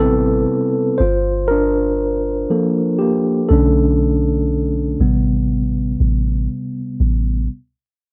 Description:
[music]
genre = contemporary R&B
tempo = 60 BPM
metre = 4/4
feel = swing 58% on 16ths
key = A minor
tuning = A4 = 441 Hz
[part]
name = mellow tine electric piano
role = accompaniment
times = 0.0-7.5 s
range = C3 to C5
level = -19 LUFS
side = equal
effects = cassette tape
[part]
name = soft 808-style bass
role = bass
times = 0.0-7.5 s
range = G1 to B1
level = -21 LUFS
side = equal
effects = none
[sound]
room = moderate booth ambience, RT60 0.2 s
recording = home recording on cassette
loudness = -17 LUFS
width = mono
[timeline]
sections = 0.0-7.5 A section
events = tine electric piano solo 0.0-7.5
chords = 0.0 Am7; 1.0 Gm7; 3.5 Bm7; 5.0 Am7

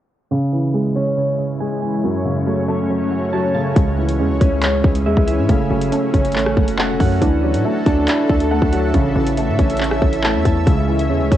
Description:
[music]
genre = hip hop, drill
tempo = 139 BPM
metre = 4/4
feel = half-time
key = C# phrygian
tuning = A4 = 439 Hz
[part]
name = dark grand piano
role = accompaniment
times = 0.3-11.4 s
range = F#2 to C#5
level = -20 LUFS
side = left 2 dB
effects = cassette tape
[part]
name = granular cloud pad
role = sustained chords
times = 1.3-11.4 s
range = G#3 to F#5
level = -25 LUFS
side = left 1 dB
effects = built-in reverb, cassette tape
[part]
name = soft electric-piano-like synth keys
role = arpeggios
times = 0.3-11.4 s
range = C#3 to A5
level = -22 LUFS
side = right 7 dB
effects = chorus, cassette tape, tape echo
[part]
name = hard-hitting 808-style bass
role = bass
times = 3.8-11.4 s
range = E1 to A2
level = -20 LUFS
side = equal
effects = none
[part]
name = drill drum kit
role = drums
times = 3.8-11.4 s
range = handclaps, hi-hat, kick drum, rim click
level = -18 LUFS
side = left 1 dB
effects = cassette tape
[sound]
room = digital ambience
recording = home recording on cassette, low-pass filter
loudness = -15 LUFS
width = side -12 dB against mid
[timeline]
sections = 0.3-3.8 A section; 3.8-11.4 B section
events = filter sweep 0.3-3.8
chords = 0.3 C#m; 2.0 F#m; 3.8 C#m; 5.5 F#m; 7.2 Dadd9; 8.9 A; 10.7 C#m

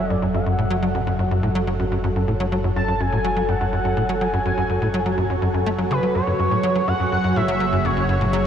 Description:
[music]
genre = ambient, sequencer-driven space music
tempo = 124 BPM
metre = 4/4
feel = straight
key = F# minor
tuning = A4 = 440 Hz
[part]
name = pulse-width lead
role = melody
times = 0.0-8.5 s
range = B4 to A5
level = -25 LUFS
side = equal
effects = chorus, shimmer reverb, analog delay
[part]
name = phased analog pad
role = sustained chords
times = 0.0-8.5 s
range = F#3 to A4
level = -24 LUFS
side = equal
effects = phaser, chorus, shimmer reverb
[part]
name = tight sequencer bass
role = riff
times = 0.0-8.4 s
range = F#2 to A3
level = -22 LUFS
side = equal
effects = wide subtle chorus, shimmer reverb, analog delay
[part]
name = analog drone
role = bass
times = 0.0-8.5 s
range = F#1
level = -28 LUFS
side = equal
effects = chorus
[sound]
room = wet huge ambient reverb, RT60 7.4 s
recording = dreamy mix soaked in reverb, cassette tape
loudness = -18 LUFS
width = side -8 dB against mid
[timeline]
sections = 0.0-8.5 A section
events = none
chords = 0.0 F#m

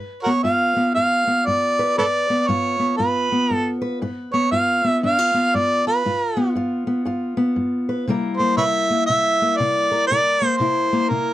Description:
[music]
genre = acoustic country blues, solo or duo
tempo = 118 BPM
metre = 4/4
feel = swing 62% on 8ths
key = G mixolydian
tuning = A4 = 439 Hz
[part]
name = fingerpicked steel-string acoustic guitar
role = accompaniment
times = 0.0-11.3 s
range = G2 to B4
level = -22 LUFS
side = left 2 dB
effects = none
[part]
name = mellow harmonica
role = melody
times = 0.2-11.3 s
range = F#4 to F5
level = -18 LUFS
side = right 1 dB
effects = none
[sound]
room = light reverb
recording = close, detailed microphones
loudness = -17 LUFS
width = side -14 dB against mid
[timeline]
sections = 0.0-11.3 A section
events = none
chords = 0.0 G7; 8.1 C7

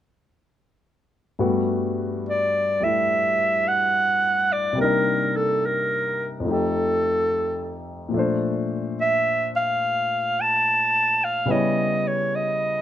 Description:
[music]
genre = jazz ballad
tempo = 72 BPM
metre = 4/4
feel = swing 66% on 8ths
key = unclear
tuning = A4 = 442 Hz
[part]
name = warm grand piano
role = accompaniment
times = 1.4-12.8 s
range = F2 to C#5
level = -25 LUFS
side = left 2 dB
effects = none
[part]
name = clear clarinet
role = melody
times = 2.3-12.8 s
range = A4 to A5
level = -20 LUFS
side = right 1 dB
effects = plate reverb
[sound]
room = moderate studio ambience, RT60 0.5 s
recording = none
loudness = -20 LUFS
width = side -11 dB against mid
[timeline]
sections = 1.4-12.8 A section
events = none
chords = 1.4 Gmaj9; 4.8 Cm9; 6.5 F9; 8.1 Bbmaj9; 11.5 C#m7b5

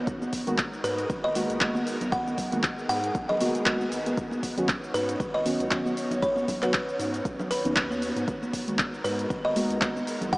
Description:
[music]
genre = deep house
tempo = 117 BPM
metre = 4/4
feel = swing 56% on 16ths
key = G# minor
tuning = A4 = 439 Hz
[part]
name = soft string machine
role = sustained chords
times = 0.0-10.4 s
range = G#3 to C#5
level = -35 LUFS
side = equal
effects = ensemble chorus, sidechain pumping
[part]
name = round analog bass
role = bass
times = 0.0-10.4 s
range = D#1 to G#2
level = -38 LUFS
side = equal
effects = tube saturation, sidechain pumping
[part]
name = electronic kick drum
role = drums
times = 0.1-10.4 s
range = none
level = -33 LUFS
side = equal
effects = none
[part]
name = punchy analog drum machine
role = drums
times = 0.1-10.4 s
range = handclaps, hi-hat, shaker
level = -31 LUFS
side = equal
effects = overdrive
[part]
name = congas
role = percussion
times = 0.2-10.3 s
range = none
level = -34 LUFS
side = equal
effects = none
[part]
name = deep mellow chord stab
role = stabs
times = 0.5-10.0 s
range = D#3 to F#4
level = -31 LUFS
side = equal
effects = analog chorus, sidechain pumping, diffuse ambient delay
[part]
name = buzzing kalimba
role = melody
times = 0.8-10.4 s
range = B4 to F#5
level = -30 LUFS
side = equal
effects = diffuse ambient delay
[sound]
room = wet huge ambient reverb, RT60 7.9 s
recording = dreamy mix soaked in reverb, small speaker sound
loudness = -25 LUFS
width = side -23 dB against mid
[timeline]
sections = 0.0-10.4 A section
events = none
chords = 0.1 G#m9; 4.2 Badd9; 8.3 G#m9

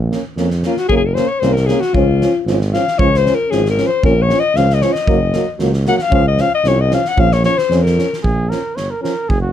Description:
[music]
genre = balkan folk, Balkan brass band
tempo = 114 BPM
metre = 2/4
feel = swing 53% on 16ths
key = Bb minor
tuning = A4 = 436 Hz
[part]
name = mellow tuba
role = bass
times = 0.0-9.5 s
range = Gb1 to F2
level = -17 LUFS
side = right 1 dB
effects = none
[part]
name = mellow trombone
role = accompaniment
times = 0.1-9.1 s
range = F3 to Bb3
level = -22 LUFS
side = right 10 dB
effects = none
[part]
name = warm French horn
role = accompaniment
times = 0.1-9.1 s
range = Bb3 to Db4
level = -23 LUFS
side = left 4 dB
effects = none
[part]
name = loose indie drum kit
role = percussion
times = 0.1-9.4 s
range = kick drum, snare drum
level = -22 LUFS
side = right 1 dB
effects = none
[part]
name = mellow alto saxophone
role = second line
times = 0.7-8.2 s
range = F4 to Gb5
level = -16 LUFS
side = left 6 dB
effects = none
[part]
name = mellow trumpet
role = melody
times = 8.2-9.5 s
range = Gb4 to Db5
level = -22 LUFS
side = right 2 dB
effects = none
[sound]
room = light reverb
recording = none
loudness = -13 LUFS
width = side -10 dB against mid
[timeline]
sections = 0.0-8.2 A section; 8.2-9.5 B section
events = alto saxophone solo 0.0-8.2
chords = 0.0 Bbm; 0.9 Gb; 1.9 Db; 4.0 Bbm; 5.1 Gb; 6.1 Db; 7.2 Bbm

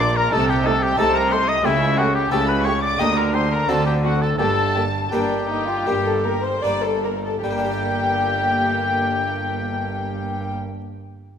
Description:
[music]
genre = classical, baroque-style concerto movement with solo episodes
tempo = 75-92 BPM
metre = 4/4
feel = straight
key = G minor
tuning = A4 = 441 Hz
[part]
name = clear oboe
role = melody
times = 0.0-10.5 s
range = E4 to G5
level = -23 LUFS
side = left 2 dB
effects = none
[part]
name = warm studio violin section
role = melody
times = 0.0-10.5 s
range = E5 to Eb6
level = -25 LUFS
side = left 3 dB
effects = none
[part]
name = warm chamber violin section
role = second line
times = 0.0-10.5 s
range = D4 to D5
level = -27 LUFS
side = left 2 dB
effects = none
[part]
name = harpsichord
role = accompaniment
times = 0.0-10.8 s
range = G2 to D5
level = -28 LUFS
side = equal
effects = none
[part]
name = warm studio viola section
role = accompaniment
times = 0.0-10.5 s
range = A3 to C4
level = -30 LUFS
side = right 1 dB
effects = none
[part]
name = rich chamber cello section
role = bass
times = 0.0-10.5 s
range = G2 to D3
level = -25 LUFS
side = right 2 dB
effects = none
[part]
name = rich chamber double bass section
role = bass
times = 0.0-10.5 s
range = G1 to D2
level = -28 LUFS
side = right 3 dB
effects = none
[sound]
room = moderate concert hall reverb, RT60 2.1 s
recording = none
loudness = -18 LUFS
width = side -8 dB against mid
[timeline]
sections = 0.0-7.4 A section; 7.4-10.6 B section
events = slowing down 0.3-7.4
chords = 0.3 Adim/C; 1.6 A7/C#; 3.0 Gm/D; 3.7 D7; 4.4 Gm

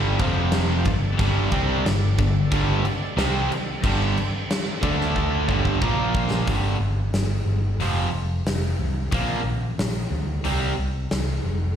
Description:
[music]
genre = hard rock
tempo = 91 BPM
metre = 4/4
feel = straight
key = G minor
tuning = A4 = 441 Hz
[part]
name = overdriven tonewheel organ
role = sustained chords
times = 0.0-6.5 s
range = F3 to E5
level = -35 LUFS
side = left 1 dB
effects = none
[part]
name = crunchy overdriven guitar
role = riff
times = 0.0-10.7 s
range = F2 to D4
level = -27 LUFS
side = right 9 dB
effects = slapback echo
[part]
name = crunchy overdriven guitar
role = riff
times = 0.0-6.5 s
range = F2 to D4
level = -29 LUFS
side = equal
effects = slapback echo
[part]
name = tight distorted guitar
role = riff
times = 0.0-10.7 s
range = F2 to D4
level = -28 LUFS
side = left 11 dB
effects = distortion, slapback echo
[part]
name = picked electric bass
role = bass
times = 0.0-11.7 s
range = F1 to D2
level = -24 LUFS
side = equal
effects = none
[part]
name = huge arena drum kit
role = drums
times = 0.2-11.3 s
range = crash cymbal, hi-hat, kick drum, snare drum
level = -27 LUFS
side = left 1 dB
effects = none
[sound]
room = light reverb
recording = live gig heard through the venue's PA, recital hall reverb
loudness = -20 LUFS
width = side -9 dB against mid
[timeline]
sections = 0.0-6.5 A section; 6.5-11.8 B section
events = drum fill 5.2-6.5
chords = 0.2 F5; 0.9 G5; 4.8 D5; 5.5 G5; 5.8 Bb5; 6.5 G5; 7.8 F5; 9.1 Bb; 10.5 C5

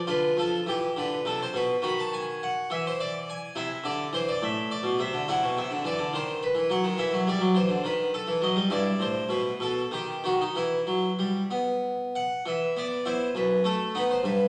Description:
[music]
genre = classical, baroque-style suite movement for harpsichord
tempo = 62-71 BPM (dotted quarters)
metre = 6/8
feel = rubato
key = A minor, E minor from 5.3 s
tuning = A4 = 440 Hz
[part]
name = harpsichord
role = solo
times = 0.0-14.5 s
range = F#2 to B5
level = -27 LUFS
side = equal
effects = none
[sound]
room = wet recital hall reverb, RT60 1.5 s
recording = none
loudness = -28 LUFS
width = mono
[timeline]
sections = 0.0-12.4 A section; 12.4-14.5 B section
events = none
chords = 0.1 Bdim/D; 1.8 D#madd11; 2.7 N.C.; 3.5 Am/C; 5.3 Bmadd11; 6.1 D#m6; 7.0 Em; 7.8 D#dim; 8.7 Em/G; 9.6 B; 10.5 E5; 13.3 B7/F#

